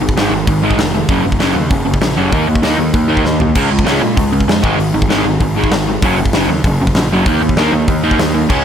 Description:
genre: punk rock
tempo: 195 BPM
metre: 4/4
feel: straight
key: unclear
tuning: A4 = 439 Hz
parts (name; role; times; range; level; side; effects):
- crunchy overdriven guitar; riff; 0.0-8.6 s; Gb2 to Eb4; -14 LUFS; equal; none
- fuzz picked electric bass; bass; 0.0-8.6 s; F1 to Bb2; -19 LUFS; equal; overdrive
- big rock drum kit; drums; 0.1-8.6 s; crash cymbal, hi-hat, kick drum, snare drum, toms; -16 LUFS; equal; none
room: light reverb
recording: none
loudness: -11 LUFS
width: side -8 dB against mid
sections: 0.0-8.6 A section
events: drum fill 3.2-3.6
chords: 0.0 Ab5; 1.1 Gb5; 2.3 Eb5; 3.6 Db5; 4.6 Ab5; 6.0 Gb5; 7.3 Eb5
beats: 0.17 0.47 0.78 | 1.09 1.40 1.71 2.02 | 2.32 2.63 2.94 3.25 | 3.56 3.86 4.17 4.48 | 4.79 5.10 5.41 5.72 | 6.03 6.33 6.64 6.95 | 7.26 7.57 7.88 8.19 | 8.51

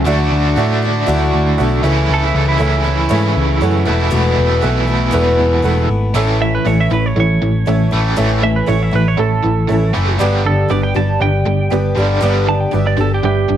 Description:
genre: rock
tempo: 118 BPM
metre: 4/4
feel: straight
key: A major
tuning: A4 = 440 Hz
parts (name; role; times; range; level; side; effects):
- picked twelve-string acoustic guitar; accompaniment; 0.0-13.6 s; E2 to G4; -20 LUFS; left 4 dB; none
- biting overdriven guitar; riff; 0.0-13.6 s; E2 to F#4; -18 LUFS; right 1 dB; tremolo
- hollow-body short-scale picked electric bass; bass; 0.0-13.6 s; E1 to A2; -16 LUFS; equal; none
- clear upright piano; accompaniment; 0.1-13.6 s; F#4 to A5; -23 LUFS; right 6 dB; none
- twelve-string electric guitar; second line; 2.1-13.6 s; E4 to A5; -20 LUFS; right 6 dB; none
room: light reverb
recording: dark, warm production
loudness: -12 LUFS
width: side -10 dB against mid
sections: 0.0-6.2 A section; 6.2-13.6 B section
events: upright piano fill 1.1-2.1; clean electric guitar solo 6.2-13.6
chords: 0.1 Dadd9; 1.8 A/C#; 3.9 Esus4; 6.2 A; 10.2 G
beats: | 0.07 0.57 1.08 1.59 | 2.10 2.60 3.11 3.62 | 4.12 4.63 5.14 5.64 | 6.15 6.66 7.16 7.67 | 8.18 8.68 9.19 9.70 | 10.20 10.71 11.21 11.72 | 12.23 12.73 13.24

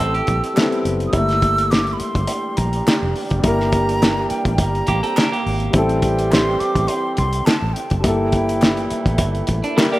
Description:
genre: lush 1970s-style soul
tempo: 104 BPM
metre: 4/4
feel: swing 54% on 16ths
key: G dorian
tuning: A4 = 440 Hz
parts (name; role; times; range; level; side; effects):
- breathy mellow silver concert flute; melody; 0.0-9.2 s; G5 to E6; -24 LUFS; right 1 dB; tape echo
- dark grand piano; accompaniment; 0.0-10.0 s; G3 to D5; -23 LUFS; left 2 dB; none
- clean electric guitar; riff; 0.0-1.0, 4.9-5.7, 9.6-10.0 s; G3 to Bb4; -24 LUFS; right 3 dB; none
- mellow horn section; stabs; 0.0-10.0 s; Bb2 to A4; -26 LUFS; right 2 dB; none
- vintage muted fingered electric bass; bass; 0.0-9.6 s; F1 to C2; -22 LUFS; equal; none
- cloth-damped thuddy drum kit; drums; 0.1-10.0 s; hi-hat, kick drum, snare drum; -19 LUFS; equal; none
- group handclap; percussion; 0.6-9.9 s; none; -32 LUFS; left 1 dB; none
room: light reverb, small room ambience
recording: rough home demo mix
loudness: -16 LUFS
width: side -17 dB against mid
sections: 0.0-10.0 A section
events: none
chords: 0.0 Am7; 1.1 Gm69; 5.7 Am7; 8.0 Gm69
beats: 0.56 | 1.13 1.71 2.28 2.86 | 3.43 4.01 4.58 5.16 | 5.74 6.31 6.89 7.46 | 8.04 8.62 9.19 9.77

